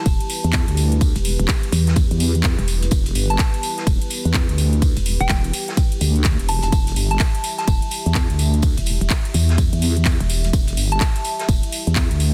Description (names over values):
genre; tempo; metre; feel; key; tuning
bass house; 126 BPM; 4/4; swing 62% on 16ths; E minor; A4 = 440 Hz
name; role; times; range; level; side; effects
soft synth bell; melody; 0.0-11.2 s; G5 to A5; -29 LUFS; equal; chorus, phaser, digital delay
dark analog pad; sustained chords; 0.0-12.3 s; E4 to E5; -34 LUFS; equal; chorus, sidechain pumping
pulsing pluck wobble bass; bass; 0.1-11.6 s; E1 to E2; -22 LUFS; equal; chorus, tube saturation, sidechain pumping
electronic kick drum; drums; 0.1-12.1 s; none; -21 LUFS; equal; none
house drum kit; drums; 0.1-12.3 s; handclaps, hi-hat, ride cymbal; -29 LUFS; equal; none
vintage drum kit; drums; 0.1-12.3 s; hi-hat, snare drum, tambourine; -35 LUFS; equal; sidechain pumping on hats, high-pass filter on hats, high-pass filter on snare, sidechain pumping on perc, high-pass filter on perc, high-pass filter on room
vowel-sweep wobble bass; bass; 0.4-12.3 s; E1 to E2; -21 LUFS; equal; chorus, tube saturation, sidechain pumping
room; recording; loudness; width
digital ambience; dense, heavily limited modern master; -19 LUFS; mono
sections
0.0-12.3 A section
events
none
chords
0.0 Em